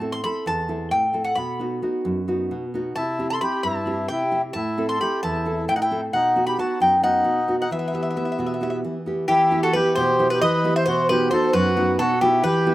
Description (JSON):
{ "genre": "greek folk, Greek bouzouki band", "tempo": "265 BPM (eighths)", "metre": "7/8", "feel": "straight", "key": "E harmonic minor", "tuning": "A4 = 440 Hz", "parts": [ { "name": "Greek bouzouki", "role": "melody", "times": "0.0-12.7 s", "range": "G4 to C6", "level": "-22 LUFS", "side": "left 1 dB", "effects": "slapback echo" }, { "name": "nylon-string guitar", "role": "accompaniment", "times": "0.0-12.7 s", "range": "E2 to A4", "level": "-24 LUFS", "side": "right 1 dB", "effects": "none" }, { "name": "accordion", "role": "second line", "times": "3.0-12.7 s", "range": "B3 to C5", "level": "-25 LUFS", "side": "equal", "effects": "slapback echo" } ], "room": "little or no reverb", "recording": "recorded outdoors, with no room sound", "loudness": "-19 LUFS", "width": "side -15 dB against mid", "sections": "0.0-9.3 A section; 9.3-12.7 B section", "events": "none", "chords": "0.0 Am; 1.4 B; 3.0 C; 4.5 Am; 6.1 B; 7.7 Em; 10.9 B", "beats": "0.01 0.24 0.46 0.69 0.92 1.14 | 1.37 1.60 1.82 2.05 2.28 2.50 2.73 | 2.96 3.18 3.41 3.63 3.86 4.09 4.31 | 4.54 4.77 4.99 5.22 5.45 5.67 5.90 | 6.13 6.35 6.58 6.80 7.03 7.26 7.48 | 7.71 7.94 8.16 8.39 8.61 8.84 9.06 | 9.29 9.52 9.74 9.97 10.19 10.42 10.64 | 10.87 11.09 11.32 11.54 11.77 11.99 12.22 | 12.44 12.67" }